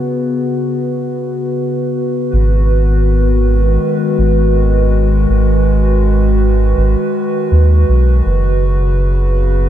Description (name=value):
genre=ambient dub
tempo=81 BPM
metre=4/4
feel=swing 56% on 16ths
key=G# minor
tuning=A4 = 439 Hz
part: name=warbly tape-like pad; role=sustained chords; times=0.0-9.7 s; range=C#3 to B4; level=-16 LUFS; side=left 1 dB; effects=chorus, built-in reverb
part: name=soft dub sub bass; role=bass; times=2.3-9.7 s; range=F#1 to D#2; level=-12 LUFS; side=equal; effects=tube saturation
room=digital ambience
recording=none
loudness=-11 LUFS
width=side -11 dB against mid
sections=0.0-2.3 A section; 2.3-9.7 B section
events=none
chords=0.0 F#sus4; 2.3 G#m7; 8.3 F#sus4